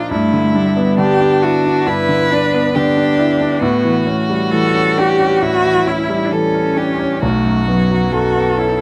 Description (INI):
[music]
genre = classical, slow romantic movement for piano trio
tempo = 67 BPM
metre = 4/4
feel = rubato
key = unclear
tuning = A4 = 440 Hz
[part]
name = rich violin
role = melody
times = 0.0-8.8 s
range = D4 to B4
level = -22 LUFS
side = equal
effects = none
[part]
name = clear concert grand piano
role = accompaniment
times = 0.0-8.8 s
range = B1 to E4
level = -20 LUFS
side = equal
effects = none
[part]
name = dark cello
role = second line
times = 0.1-8.8 s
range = F#3 to A4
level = -18 LUFS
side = equal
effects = none
[sound]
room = light reverb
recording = none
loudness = -15 LUFS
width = mono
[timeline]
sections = 0.0-8.8 A section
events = none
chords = 0.1 Em7/G; 3.6 A7; 7.2 B5